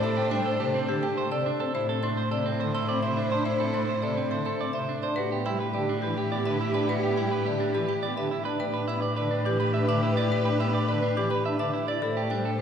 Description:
classical, minimalist pattern music; 105 BPM; 3/4; straight; A minor; A4 = 443 Hz
marimba with medium hard mallets; melody; 0.0-12.6 s; G4 to C6; -31 LUFS; left 3 dB
rich studio string section; sustained chords; 0.0-12.6 s; D4 to C5; -35 LUFS; left 1 dB
clean electric guitar; arpeggios; 0.0-12.6 s; C4 to E5; -31 LUFS; right 4 dB
rich cello; bass; 0.0-12.6 s; A2; -30 LUFS; equal
mellow hollow wooden-headed alto flute; second line; 0.1-12.5 s; G4 to C5; -34 LUFS; right 2 dB
pipe organ, foundations; accompaniment; 0.2-12.6 s; C3 to E4; -34 LUFS; equal
wet church reverb, RT60 3.4 s; recorded in a church or concert hall; -24 LUFS; side -8 dB against mid
0.0-12.6 A section
0.0 D7sus4/A; 1.7 Am; 5.2 Em7/A; 8.6 G/A; 12.0 D7sus4/A
| 0.03 0.60 1.17 | 1.74 2.31 2.88 | 3.46 4.03 4.60 | 5.17 5.74 6.31 | 6.88 7.46 8.03 | 8.60 9.17 9.74 | 10.31 10.88 11.46 | 12.03 12.60

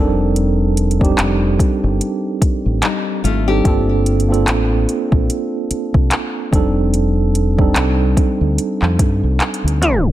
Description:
contemporary R&B; 73 BPM; 4/4; swing 58% on 16ths; A4 = 436 Hz
mellow tine electric piano; accompaniment; 0.0-10.1 s; G3 to C5; -18 LUFS; right 3 dB; medium stereo tremolo
deep dub fingered electric bass; bass; 0.0-10.1 s; F1 to G2; -17 LUFS; equal
smooth R&B drum kit; drums; 0.4-10.0 s; handclaps, hi-hat, kick drum; -17 LUFS; equal; overdrive
nylon-string guitar; arpeggios; 2.8-3.9 s; G3 to G4; -22 LUFS; left 10 dB; ping-pong delay
breathy alto saxophone; melody; 9.8-10.1 s; G4; -18 LUFS; equal
light reverb; tape stop; -14 LUFS; side -14 dB against mid
0.0-10.1 A section
tape stop 9.8-10.1
0.0 F13; 3.6 Gm11; 6.5 F13
| 0.36 1.19 2.01 2.83 | 3.65 4.47 5.29 6.12 | 6.94 7.76 8.58 9.40

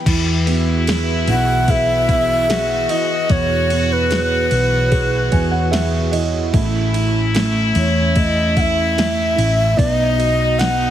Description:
pop ballad; 74 BPM; 4/4; straight; E major; A4 = 440 Hz
felt-muted upright piano; accompaniment; 0.0-10.9 s; B2 to G#5; -23 LUFS; right 7 dB
airy breathy pad; sustained chords; 0.0-10.9 s; E3 to C#5; -26 LUFS; left 2 dB; chorus
muted French horn section; second line; 0.1-10.9 s; D#4 to F#4; -23 LUFS; left 3 dB
hollow-body short-scale fingered electric bass; bass; 0.1-10.9 s; A1 to E2; -20 LUFS; equal
smooth R&B drum kit; drums; 0.1-10.8 s; crash cymbal, kick drum, ride cymbal, snare drum; -22 LUFS; equal
breathy long shakuhachi; melody; 1.3-10.9 s; B4 to F#5; -19 LUFS; equal
light reverb, studio ambience; heavily compressed radio sound; -14 LUFS; side -11 dB against mid
0.1-10.9 A section
felt piano fill 4.9-6.5
0.1 Eadd9; 6.5 A; 9.8 B
| 0.06 0.87 1.68 2.49 | 3.30 4.11 4.92 5.73 | 6.54 7.35 8.16 8.97 | 9.79 10.60

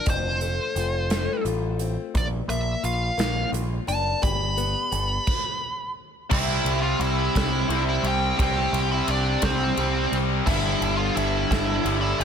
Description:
quiet-loud alternative rock; 58 BPM (dotted quarters); 6/8; straight; C major; A4 = 441 Hz
nasal lead guitar with a parked wah; melody; 0.0-12.2 s; C4 to B5; -27 LUFS; right 1 dB; overdrive
picked old ladder-braced acoustic guitar; arpeggios; 0.0-5.3 s; F2 to A4; -31 LUFS; left 13 dB
growling picked electric bass; bass; 0.1-12.2 s; F1 to C2; -27 LUFS; equal; overdrive
big rock drum kit; drums; 0.1-12.2 s; crash cymbal, hi-hat, kick drum, ride cymbal, snare drum; -29 LUFS; right 1 dB
distorted electric guitar; riff; 6.3-12.2 s; G2 to C4; -27 LUFS; left 16 dB; overdrive
tight distorted guitar; riff; 6.3-12.2 s; G2 to C4; -28 LUFS; right 14 dB; distortion
little or no reverb; -22 LUFS; side -7 dB against mid
0.0-6.3 A section; 6.3-12.2 B section
stop 5.3-6.3
0.1 F; 2.1 Bb; 4.2 Gadd9; 6.3 C; 10.5 G5
| 0.07 1.11 | 2.15 3.19 | 4.23 5.27 | 6.31 7.34 | 8.38 9.42 | 10.46 11.50

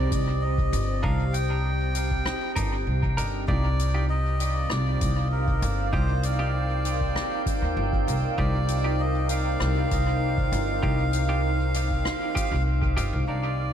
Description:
ambient dub; 98 BPM; 4/4; straight; A4 = 440 Hz
melodica; melody; 0.0-13.7 s; Bb4 to G5; -31 LUFS; right 1 dB; dub echo
deep dark ambient pad; sustained chords; 0.0-13.7 s; C4 to G5; -31 LUFS; right 1 dB; chorus, built-in reverb
upright bass; bass; 0.0-13.7 s; G1 to Eb2; -25 LUFS; equal; tube saturation
electronic kick drum; drums; 0.1-12.9 s; -29 LUFS; equal
soft-mallet drum kit; drums; 0.1-13.1 s; hi-hat, rim click; -36 LUFS; left 2 dB; dub echo
clean electric guitar; stabs; 1.0-13.5 s; D4 to Bb4; -36 LUFS; right 2 dB; dub echo
drifting glass-harmonics texture; texture; 4.5-13.7 s; Bb3 to C5; -37 LUFS; right 2 dB; chorus, built-in reverb
light reverb, small room ambience; -23 LUFS; side -9 dB against mid
0.0-13.3 A section
0.0 Cm9; 3.5 Ebadd9
0.42 | 1.03 1.65 2.26 2.87 | 3.48 4.10 4.71 5.32 | 5.93 6.54 7.16 7.77 | 8.38 8.99 9.61 10.22 | 10.83 11.44 12.05 12.67 | 13.28

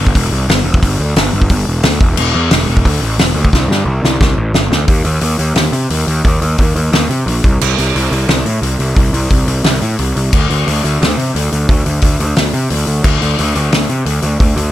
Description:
punk rock; 177 BPM; 4/4; straight; A4 = 441 Hz
fuzz picked electric bass; bass; 0.0-14.7 s; E1 to C3; -14 LUFS; equal; overdrive
loose indie drum kit; drums; 0.1-14.6 s; crash cymbal, hi-hat, kick drum, snare drum; -14 LUFS; equal
little or no reverb; -11 LUFS; side -13 dB against mid
0.0-4.9 A section; 4.9-14.7 B section
drum fill 3.5-4.9; half time 4.9-14.7
0.14 0.48 | 0.82 1.16 1.50 1.84 | 2.17 2.51 2.85 3.19 | 3.53 3.87 4.21 4.55 | 4.88 5.22 5.56 5.90 | 6.24 6.58 6.92 7.26 | 7.60 7.94 8.28 8.62 | 8.96 9.30 9.64 9.98 | 10.32 10.66 11.00 11.34 | 11.68 12.02 12.36 12.70 | 13.04 13.38 13.72 14.05 | 14.39

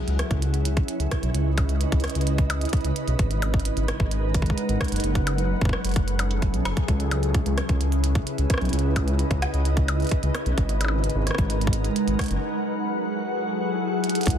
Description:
IDM; 130 BPM; 4/4; straight; C# minor; A4 = 439 Hz
glassy FM pad; sustained chords; 0.0-14.4 s; C#3 to F#5; -27 LUFS; equal; ensemble chorus, built-in reverb
dark detuned saw bass; bass; 0.1-14.4 s; F#1 to C#2; -24 LUFS; equal
glitchy drum kit; drums; 0.1-14.3 s; hi-hat, percussion blips, rim click; -31 LUFS; equal; soft clipping on snare, tape echo
electronic kick drum; drums; 0.3-14.4 s; -23 LUFS; equal
light reverb; dense, heavily limited modern master; -21 LUFS; side -9 dB against mid
0.0-14.3 A section
break 12.4-14.3; drum fill 14.0
0.0 C#m9; 3.2 G#m9; 5.0 F#m9; 6.9 C#m9; 10.6 G#m9; 12.4 F#m9
0.42 0.88 | 1.34 1.81 2.27 2.73 | 3.19 3.65 4.11 4.58 | 5.04 5.50 5.96 6.42 | 6.88 7.34 7.81 8.27 | 8.73 9.19 9.65 10.11 | 10.58 11.04 11.50 11.96 | 12.42 12.88 13.35 13.81 | 14.27

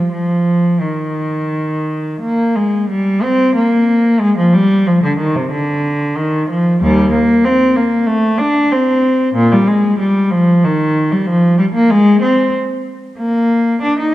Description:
classical, baroque-style suite movement for unaccompanied cello; 94 BPM; 4/4; rubato; Eb major; A4 = 438 Hz
warm cello; solo; 0.0-14.1 s; Eb2 to Eb4; -12 LUFS; equal
moderate concert hall reverb, RT60 1.9 s; dark, warm production; -11 LUFS; side -15 dB against mid
0.0-2.9 A section; 2.9-14.1 A section
| 0.11 0.81 1.51 2.20 | 2.90 3.56 4.21 4.86 | 5.51 6.17 6.81 7.44 | 8.08 8.71 9.35 9.99 | 10.62 11.27 11.90 12.54 | 13.18 13.82

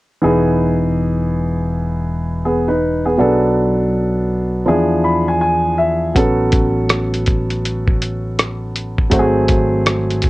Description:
hip hop, jazz-hop; 81 BPM; 4/4; swing 63% on 16ths; E major; A4 = 441 Hz
dark upright piano; accompaniment; 0.2-10.3 s; E3 to B5; -16 LUFS; equal
fretless electric bass; bass; 0.2-10.3 s; E1 to E2; -20 LUFS; equal; wide subtle chorus
lo-fi sampler-style drum kit; drums; 6.2-10.3 s; hi-hat, kick drum, rim click; -16 LUFS; equal
moderate small room reverb, RT60 0.5 s; worn, warbling old tape, cassette tape, warbly pitch drift; -14 LUFS; side -19 dB against mid
0.2-10.3 A section
upright piano fill 4.7-6.2
0.2 Emaj7; 3.2 Bm7; 4.7 E7b9; 6.2 A69; 9.1 G#7b9
| 0.24 0.98 1.72 2.46 | 3.20 3.94 4.68 5.42 | 6.16 6.90 7.64 8.39 | 9.13 9.87

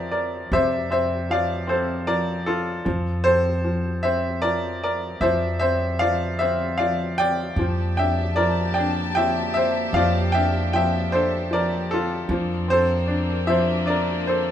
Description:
acoustic folk-pop ballad; 51 BPM (dotted quarters); 6/8; straight; F major; A4 = 440 Hz
bright upright piano; melody; 0.0-14.5 s; C3 to G5; -21 LUFS; equal
upright bass; bass; 0.0-14.5 s; F2; -27 LUFS; equal
warm studio string section; sustained chords; 7.6-14.5 s; Bb3 to A5; -30 LUFS; equal
moderate large studio reverb, RT60 0.8 s; minimal, uncompressed stereo recording; -20 LUFS; side -10 dB against mid
0.0-14.5 A section
0.0 F; 7.6 Gmadd9/F; 12.3 Bbadd9/F
| 0.50 1.67 | 2.85 4.03 | 5.21 6.38 | 7.57 8.75 | 9.93 11.11 | 12.29 13.46

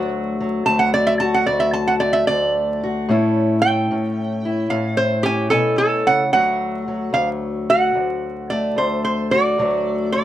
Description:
acoustic country blues, solo or duo; 74 BPM; 4/4; swing 68% on 8ths; D major; A4 = 440 Hz
lap resonator guitar; melody; 0.0-10.2 s; G4 to A5; -18 LUFS; right 2 dB
fingerpicked steel-string acoustic guitar; accompaniment; 0.0-10.2 s; D2 to F#4; -21 LUFS; left 2 dB
light reverb; dark, warm production, vinyl crackle; -17 LUFS; side -12 dB against mid
0.0-6.3 A section; 6.3-10.2 B section
resonator guitar played with a steel bar solo 0.0-6.3
0.0 D; 3.1 A; 6.3 D
0.66 1.47 2.28 | 3.09 3.90 4.71 5.52 | 6.33 7.14 7.95 8.77 | 9.58

